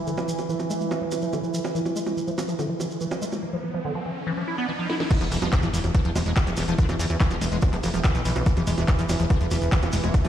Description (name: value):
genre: psychedelic trance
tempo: 143 BPM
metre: 4/4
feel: straight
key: unclear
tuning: A4 = 441 Hz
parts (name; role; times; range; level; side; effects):
- bubbling stepped-filter texture; sustained chords; 0.0-10.3 s; E3; -31 LUFS; right 3 dB; chorus, built-in reverb, sidechain pumping
- liquid acid bass; riff; 0.0-10.3 s; D3 to E4; -29 LUFS; left 1 dB; chorus, auto-pan, sidechain pumping, digital delay
- impact and riser; sound effects; 2.7-6.8 s; none; -35 LUFS; equal; none
- shekere; percussion; 0.1-10.3 s; none; -39 LUFS; right 3 dB; none
- techno drum kit; drums; 0.2-10.3 s; bongos, crash cymbal, handclaps, hi-hat, snare drum; -31 LUFS; right 2 dB; none
- electronic kick drum; drums; 5.1-10.2 s; none; -21 LUFS; equal; none
- plucky analog bass; bass; 5.2-10.3 s; E1 to E2; -25 LUFS; equal; none
room: moderate lush hall reverb, RT60 2.0 s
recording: played on a big sound system in a bare room, stone room reverb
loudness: -22 LUFS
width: side -10 dB against mid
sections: 0.0-5.1 A section; 5.1-10.3 B section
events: riser 2.7-5.1; drum fill 4.9; drop 5.1-10.3; impact 5.1-6.8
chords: 0.0 E5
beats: | 0.07 0.49 0.91 1.33 | 1.75 2.17 2.59 3.01 | 3.43 3.85 4.27 4.69 | 5.11 5.53 5.95 6.37 | 6.78 7.20 7.62 8.04 | 8.46 8.88 9.30 9.72 | 10.14